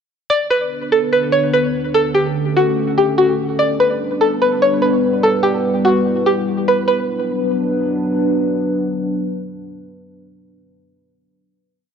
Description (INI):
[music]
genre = hip hop, trap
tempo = 146 BPM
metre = 4/4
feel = half-time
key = B minor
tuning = A4 = 442 Hz
[part]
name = string-like resonator pluck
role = melody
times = 0.3-8.1 s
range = F#4 to D5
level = -16 LUFS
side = equal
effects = chorus, phaser, low-pass filter, analog delay
[part]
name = dark analog pad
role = sustained chords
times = 0.8-10.6 s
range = D3 to B4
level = -18 LUFS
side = equal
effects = chorus, phaser
[sound]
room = moderate lush hall reverb, RT60 2.5 s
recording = dry, gritty hardware recording, cassette tape, nothing above 10.4 kHz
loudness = -14 LUFS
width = side -7 dB against mid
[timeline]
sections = 0.3-6.9 breakdown; 6.9-10.2 final chord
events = none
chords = 0.3 Bm; 1.9 F#m; 3.6 G; 5.2 Em; 6.9 Bm